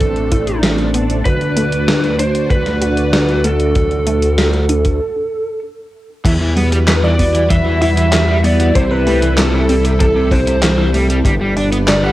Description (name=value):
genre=synthwave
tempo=96 BPM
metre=4/4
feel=straight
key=E minor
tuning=A4 = 440 Hz
part: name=lead guitar through a small cranked amp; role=melody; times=0.0-12.1 s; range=A4 to F#5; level=-19 LUFS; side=right 1 dB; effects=overdrive, vintage 12-bit sampler grit, tape echo, plate reverb
part: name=string machine, full ensemble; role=sustained chords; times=0.0-12.1 s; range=G3 to D5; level=-21 LUFS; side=equal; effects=ensemble chorus, sidechain pumping, cassette tape, plate reverb
part: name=warbly dusty pluck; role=arpeggios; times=0.0-12.0 s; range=D3 to F#4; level=-23 LUFS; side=right 1 dB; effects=chorus, cassette tape, tape echo, plate reverb
part: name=chorused synth bass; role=bass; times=0.0-12.1 s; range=G1 to E2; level=-16 LUFS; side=equal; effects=tube saturation, sidechain pumping
part: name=gated 80s digital drum machine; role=drums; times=0.0-12.0 s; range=crash cymbal, handclaps, hi-hat, snare drum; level=-19 LUFS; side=equal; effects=gated reverb, gated reverb snare, cassette tape
part: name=kick drum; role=drums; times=0.0-11.4 s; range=none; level=-19 LUFS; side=equal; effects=cassette tape
part: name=crunchy overdriven guitar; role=riff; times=6.3-12.1 s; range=C3 to D4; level=-20 LUFS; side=equal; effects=analog chorus, cassette tape, tape echo
part: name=FM electric piano with soft pad layer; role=second line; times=6.9-12.1 s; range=A4 to F#5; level=-24 LUFS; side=left 1 dB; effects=none
room=moderate small room reverb, RT60 0.5 s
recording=home recording on cassette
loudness=-12 LUFS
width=side -15 dB against mid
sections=0.0-6.3 A section; 6.3-12.1 B section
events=break 5.0-6.3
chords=0.0 Amadd9; 1.3 D; 6.3 Emadd9; 8.8 C6; 11.3 G